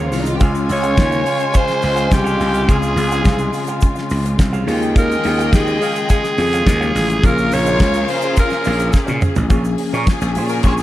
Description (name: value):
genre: disco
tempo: 106 BPM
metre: 4/4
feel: straight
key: Bb dorian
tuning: A4 = 440 Hz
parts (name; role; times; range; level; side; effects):
- raspy alto saxophone; melody; 0.0-9.2 s; G4 to Db5; -20 LUFS; right 1 dB; slapback echo
- rich studio violin section; second line; 0.0-10.8 s; Ab3 to Ab5; -26 LUFS; left 1 dB; none
- bell-like tine electric piano; accompaniment; 0.0-10.8 s; Db3 to Ab4; -25 LUFS; left 3 dB; medium stereo tremolo
- electric guitar with an envelope filter; accompaniment; 0.0-10.8 s; Db4 to F5; -28 LUFS; right 4 dB; phaser
- clear studio string section; sustained chords; 0.0-10.8 s; Db3 to Ab4; -28 LUFS; equal; none
- gritty slap bass; bass; 0.0-10.8 s; A1 to Bb2; -19 LUFS; equal; overdrive
- damped 70s drum kit; drums; 0.1-10.8 s; hi-hat, kick drum, snare drum, toms; -18 LUFS; equal; gated reverb
- tube shaker; percussion; 0.1-10.8 s; none; -39 LUFS; right 7 dB; none
- clear horn section; stabs; 0.4-10.7 s; F3 to C6; -27 LUFS; left 3 dB; none
room: studio ambience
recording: none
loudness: -14 LUFS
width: side -14 dB against mid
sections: 0.0-9.5 A section; 9.5-10.8 B section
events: drum fill 8.9-9.5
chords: 0.4 Dbmaj7; 4.7 Eb9sus4; 7.2 Bbm9; 9.5 Bbm7